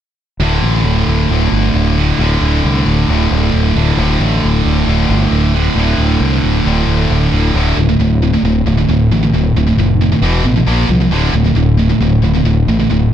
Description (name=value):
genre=metal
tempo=134 BPM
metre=4/4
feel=straight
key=unclear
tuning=A4 = 444 Hz
part: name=high-gain distorted guitar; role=riff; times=0.4-13.1 s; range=D2 to Bb3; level=-16 LUFS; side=left 8 dB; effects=distortion
part: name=high-gain distorted guitar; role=riff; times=0.4-13.1 s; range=D2 to Bb3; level=-16 LUFS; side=right 9 dB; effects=distortion
part: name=growling fingered electric bass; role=bass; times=0.4-13.1 s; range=D1 to C2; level=-14 LUFS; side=equal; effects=overdrive
room=light reverb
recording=dark, warm production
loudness=-11 LUFS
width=side -10 dB against mid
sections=0.4-7.6 A section; 7.6-13.1 B section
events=none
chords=0.4 D5; 7.6 Dm; 10.2 E5; 10.7 Bb5; 11.1 D5